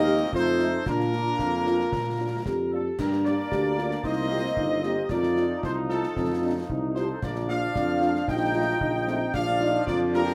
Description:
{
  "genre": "military-style march for wind band",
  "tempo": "113 BPM",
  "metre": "2/4",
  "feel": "straight",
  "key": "Bb major",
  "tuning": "A4 = 441 Hz",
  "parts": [
    { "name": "warm trumpet section", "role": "melody", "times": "0.0-10.3 s", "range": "A4 to G5", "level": "-34 LUFS", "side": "equal", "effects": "none" },
    { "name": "clear woodwind section", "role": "second line", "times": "0.0-10.3 s", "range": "C4 to G5", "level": "-35 LUFS", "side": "equal", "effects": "none" },
    { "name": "mellow euphonium", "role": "second line", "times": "0.0-10.2 s", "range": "C4 to G4", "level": "-32 LUFS", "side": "equal", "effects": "none" },
    { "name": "mellow large flute ensemble", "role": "second line", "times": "0.0-10.3 s", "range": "F4 to Eb5", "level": "-36 LUFS", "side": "equal", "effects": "none" },
    { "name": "bright trombone section", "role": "sustained chords", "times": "0.0-10.3 s", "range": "F3 to Eb4", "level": "-36 LUFS", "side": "equal", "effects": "none" },
    { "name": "mellow tuba", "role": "bass", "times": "0.0-10.3 s", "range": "G1 to Bb2", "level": "-30 LUFS", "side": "equal", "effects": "none" },
    { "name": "dark French horn section", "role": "accompaniment", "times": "0.1-10.2 s", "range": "A3 to G4", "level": "-34 LUFS", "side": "equal", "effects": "none" },
    { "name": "concert bass drum, concert snare drum and clash cymbals", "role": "drums", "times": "0.3-10.3 s", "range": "none", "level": "-38 LUFS", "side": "equal", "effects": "none" }
  ],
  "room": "moderate booth ambience, RT60 0.3 s",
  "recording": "none",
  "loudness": "-26 LUFS",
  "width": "mono",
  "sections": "0.0-3.0 A section; 3.0-10.3 A section",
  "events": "none",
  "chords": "0.3 F7; 0.9 Bb; 3.0 Gm; 4.0 Cm7; 5.1 F7; 7.2 Bb; 8.3 F7/Bb; 9.3 Bb"
}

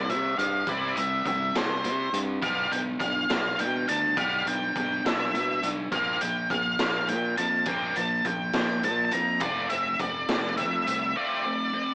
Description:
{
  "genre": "indie rock",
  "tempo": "69 BPM (dotted quarters)",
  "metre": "6/8",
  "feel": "straight",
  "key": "G mixolydian",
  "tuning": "A4 = 445 Hz",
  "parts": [
    { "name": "octave-fuzz lead guitar", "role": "melody", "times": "0.0-11.9 s", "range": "C5 to Bb5", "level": "-29 LUFS", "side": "equal", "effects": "distortion, cassette tape, analog delay" },
    { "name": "high-gain distorted guitar", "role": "riff", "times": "0.0-11.9 s", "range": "F3 to G4", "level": "-34 LUFS", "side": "equal", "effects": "distortion, cassette tape" },
    { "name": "growling fingered electric bass", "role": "bass", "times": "0.0-11.1 s", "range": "F1 to C3", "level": "-37 LUFS", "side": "equal", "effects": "overdrive" },
    { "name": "raw garage drum kit", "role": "drums", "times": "0.1-11.0 s", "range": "hi-hat, kick drum, snare drum", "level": "-34 LUFS", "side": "equal", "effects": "cassette tape" }
  ],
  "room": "light reverb, studio reverb",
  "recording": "home recording on cassette, small speaker sound",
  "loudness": "-27 LUFS",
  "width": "mono",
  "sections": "0.0-11.9 A section",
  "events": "none",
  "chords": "0.0 C; 2.4 G/B; 5.9 Bbsus2; 9.4 F6"
}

